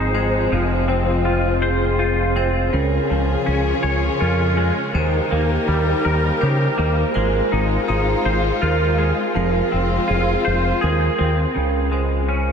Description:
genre	rock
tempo	54 BPM (dotted quarters)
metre	6/8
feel	straight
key	unclear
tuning	A4 = 440 Hz
part	dark chamber string section	sustained chords	0.0-11.5 s	Db3 to Bb4	-24 LUFS	left 2 dB	none
part	twangy electric guitar	arpeggios	0.0-12.5 s	Db3 to Db5	-22 LUFS	left 2 dB	ensemble chorus, analog delay
part	vibraphone with medium hard mallets	arpeggios	0.0-12.5 s	Ab4 to C5	-25 LUFS	moving between equal and right 7 dB	auto-pan, analog delay
part	growling fingered electric bass	bass	0.0-12.5 s	F1 to Db3	-20 LUFS	equal	overdrive
room	wet huge ambient reverb, RT60 7.5 s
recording	dreamy mix soaked in reverb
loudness	-17 LUFS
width	side -6 dB against mid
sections	0.0-2.7 A section; 2.7-11.6 B section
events	none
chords	0.0 Ab6; 0.5 Fm; 2.7 Db; 4.9 Eb; 7.1 Ab6; 9.4 Fm; 11.6 Db5

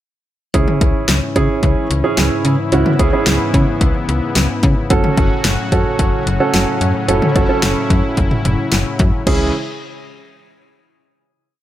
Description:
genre	synth-pop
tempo	110 BPM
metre	4/4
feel	straight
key	C# minor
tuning	A4 = 438 Hz
part	warm grand piano	accompaniment	0.5-9.5 s	C#4 to A4	-18 LUFS	right 4 dB	none
part	brassy analog pad	sustained chords	0.5-9.5 s	G#2 to G#4	-22 LUFS	left 2 dB	chorus
part	slap-like FM bass	bass	0.5-9.5 s	F#1 to C#3	-17 LUFS	equal	none
part	deep house drum kit	drums	0.5-9.4 s	crash cymbal, hi-hat, kick drum, snare drum, toms	-17 LUFS	left 1 dB	none
room	light reverb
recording	none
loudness	-13 LUFS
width	side -13 dB against mid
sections	0.5-9.3 verse; 9.3-11.4 final chord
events	none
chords	0.5 C#m; 4.9 F#m; 9.3 C#m

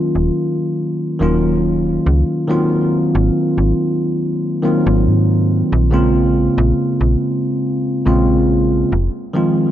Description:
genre	vaporwave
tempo	70 BPM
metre	4/4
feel	swing 53% on 16ths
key	Bb minor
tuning	A4 = 439 Hz
part	bell-like tine electric piano	accompaniment	0.0-9.7 s	Db3 to F4	-15 LUFS	equal	lush chorus, analog delay
part	slap-like FM bass	bass	0.2-9.1 s	Eb1 to Ab2	-16 LUFS	equal	none
room	light reverb, digital ambience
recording	cassette tape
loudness	-14 LUFS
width	side -11 dB against mid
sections	0.0-9.7 A section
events	none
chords	0.0 Ebm9; 2.5 Ab13; 5.9 Bbm9; 8.9 Fm7

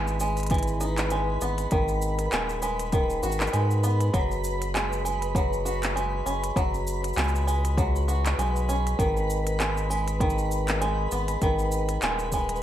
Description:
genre	folktronica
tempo	99 BPM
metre	4/4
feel	swing 56% on 16ths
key	unclear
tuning	A4 = 440 Hz
part	bluegrass banjo	arpeggios	0.0-12.6 s	D#3 to F#4	-28 LUFS	right 1 dB	digital delay
part	warm sub bass	bass	0.0-12.6 s	D#1 to G#2	-28 LUFS	equal	none
part	twinkling granular texture	texture	0.0-12.6 s	B4 to B5	-34 LUFS	equal	built-in reverb
part	organic electronic drum kit	drums	0.1-12.6 s	handclaps, hi-hat, shaker	-32 LUFS	equal	none
part	electronic kick drum	drums	0.5-12.5 s	none	-27 LUFS	equal	none
room	light reverb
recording	vinyl crackle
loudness	-23 LUFS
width	side -11 dB against mid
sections	0.0-12.6 A section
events	none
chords	0.0 Emaj7/G#; 1.7 G#m7; 4.1 F#sus2; 9.0 G#m

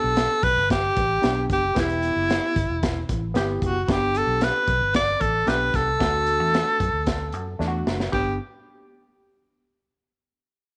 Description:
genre	uptempo 1960s-style soul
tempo	113 BPM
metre	4/4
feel	straight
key	G major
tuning	A4 = 440 Hz
part	clear tenor saxophone	melody	0.0-8.4 s	E4 to D5	-25 LUFS	equal	none
part	barky reed electric piano	accompaniment	0.0-8.4 s	A3 to G4	-32 LUFS	equal	overdrive, phaser
part	vintage muted fingered electric bass	bass	0.0-8.4 s	E1 to F#2	-31 LUFS	equal	none
part	crunchy breakbeat drum kit	drums	0.2-8.3 s	crash cymbal, hi-hat, kick drum, snare drum	-29 LUFS	equal	none
room	light reverb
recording	none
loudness	-23 LUFS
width	mono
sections	0.0-8.1 A section; 8.1-10.3 B section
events	drum fill 7.6-8.1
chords	0.0 G; 1.8 Em; 3.9 G; 6.0 D; 8.1 G

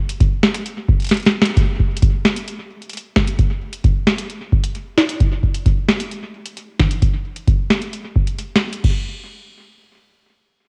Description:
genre	IDM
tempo	132 BPM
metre	4/4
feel	straight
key	none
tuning	none
part	booming analog drum machine	drums	0.1-8.9 s	crash cymbal, finger snaps, hi-hat, snare drum	-21 LUFS	equal	studio reverb, cassette tape
part	electronic kick drum	drums	0.2-8.9 s	none	-18 LUFS	equal	studio reverb, cassette tape
room	light reverb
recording	home recording on cassette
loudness	-18 LUFS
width	mono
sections	0.0-1.6 A section; 1.6-8.8 B section; 8.8-10.7 C section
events	drum fill 1.1-1.6; band accent 1.4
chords	none

